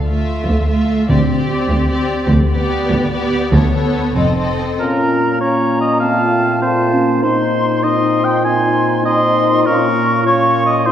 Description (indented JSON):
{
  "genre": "cinematic, heroic adventure film score",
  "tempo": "98 BPM (dotted quarters)",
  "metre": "6/8",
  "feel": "straight",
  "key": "D dorian, Bb minor from 4.8 s",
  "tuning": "A4 = 438 Hz",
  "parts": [
    { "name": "rich symphonic cello section", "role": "bass", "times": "0.0-4.7 s", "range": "D2 to F2", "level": "-19 LUFS", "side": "right 1 dB", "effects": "none" },
    { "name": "warm symphonic double bass section", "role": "bass", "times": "0.0-4.7 s", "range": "F1 to D2", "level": "-19 LUFS", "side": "right 1 dB", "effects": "none" },
    { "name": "warm symphonic violin section", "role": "melody", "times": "0.1-4.8 s", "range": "C#5 to E5", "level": "-25 LUFS", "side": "left 2 dB", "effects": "none" },
    { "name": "warm symphonic violin section", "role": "second line", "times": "0.1-4.8 s", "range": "F4 to A4", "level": "-24 LUFS", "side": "left 2 dB", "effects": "none" },
    { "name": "warm symphonic viola section", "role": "accompaniment", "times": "0.1-4.8 s", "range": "A3 to C4", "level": "-20 LUFS", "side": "equal", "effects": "none" },
    { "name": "timpani", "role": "percussion", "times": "1.1-1.7 s", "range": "D3", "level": "-21 LUFS", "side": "left 2 dB", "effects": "none" },
    { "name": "bright concert flute", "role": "second line", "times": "4.8-10.9 s", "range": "A5 to Db6", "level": "-20 LUFS", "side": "left 1 dB", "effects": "none" },
    { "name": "dark clarinet", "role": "second line", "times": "4.8-10.9 s", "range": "C4 to F4", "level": "-22 LUFS", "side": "left 2 dB", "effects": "none" },
    { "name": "warm oboe", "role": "second line", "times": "4.8-10.9 s", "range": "Bb4 to Ab5", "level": "-17 LUFS", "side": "right 1 dB", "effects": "none" },
    { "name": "warm French horn section", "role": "sustained chords", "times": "4.8-10.9 s", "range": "A3 to F4", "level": "-19 LUFS", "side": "left 3 dB", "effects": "none" },
    { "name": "warm trombone section", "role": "sustained chords", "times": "4.8-10.9 s", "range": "Bb2", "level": "-20 LUFS", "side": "right 2 dB", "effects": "none" }
  ],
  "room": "wet scoring stage reverb, RT60 1.5 s",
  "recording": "heard from further back in the room",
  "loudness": "-13 LUFS",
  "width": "side -10 dB against mid",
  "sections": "0.0-4.8 A section; 4.8-10.9 B section",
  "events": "none",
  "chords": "0.0 Dmadd9; 1.1 Csus2/D; 2.3 G/D; 4.2 F7; 4.8 Bbm; 6.0 F/Bb; 7.2 Cm/Bb; 9.7 Bbm"
}